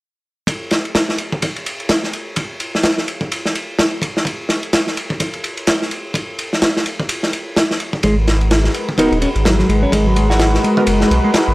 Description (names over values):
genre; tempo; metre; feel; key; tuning
breakbeat, breaks; 127 BPM; 4/4; swing 58% on 16ths; G# minor; A4 = 444 Hz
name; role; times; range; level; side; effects
crunchy breakbeat drum kit; drums; 0.5-11.5 s; kick drum, ride cymbal, snare drum; -17 LUFS; equal; high-pass filter on kick, high-pass filter on cymbals, high-pass filter on snare, high-pass filter on room
lush unison pad; sustained chords; 8.0-11.5 s; G#3 to B4; -20 LUFS; equal; chorus, vintage 12-bit sampler grit, sidechain pumping
mellow electric guitar; riff; 8.0-11.3 s; F#3 to F#4; -17 LUFS; equal; phaser, tape echo
saturated sub bass; bass; 8.0-11.5 s; D#1 to B1; -16 LUFS; equal; none
band-passed chord stab; stabs; 9.0-10.8 s; B3 to A#4; -20 LUFS; equal; chorus, phaser, tape echo
room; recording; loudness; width
light reverb; dry, gritty hardware recording, transformer saturation; -15 LUFS; side -19 dB against mid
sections
0.5-11.5 A section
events
none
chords
0.5 G#m9